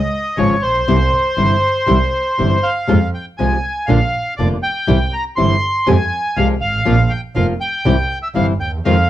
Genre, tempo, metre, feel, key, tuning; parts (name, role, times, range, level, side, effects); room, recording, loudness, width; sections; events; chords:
tango; 120 BPM; 4/4; rubato; A4 = 440 Hz
bandoneon; melody; 0.0-9.1 s; C5 to C6; -18 LUFS; equal; plate reverb
clear double bass; bass; 0.0-9.1 s; F1 to F2; -18 LUFS; right 2 dB
nylon-string guitar; accompaniment; 0.4-8.9 s; C3 to G4; -17 LUFS; left 3 dB
light reverb; dark, warm production; -14 LUFS; side -12 dB against mid
0.0-9.1 A section
0.0 Db; 0.9 C; 2.9 Fm; 3.9 Bb; 4.9 C; 5.9 Fmadd9; 6.9 Bbsus2; 7.9 C